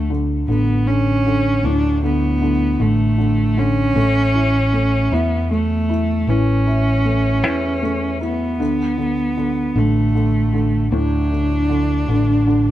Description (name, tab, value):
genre	six-eight pop ballad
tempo	52 BPM (dotted quarters)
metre	6/8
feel	straight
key	unclear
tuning	A4 = 439 Hz
part	warm cello	melody	0.0-12.7 s	A3 to D4	-20 LUFS	right 1 dB	ping-pong delay
part	felt-muted upright piano	accompaniment	0.0-12.7 s	A2 to E4	-22 LUFS	equal	none
part	fingered electric bass	bass	0.0-12.7 s	A1 to E2	-19 LUFS	equal	none
room	light reverb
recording	band playing live in one room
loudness	-15 LUFS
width	side -13 dB against mid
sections	0.0-12.7 A section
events	none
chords	0.0 D5; 4.0 A; 8.6 D5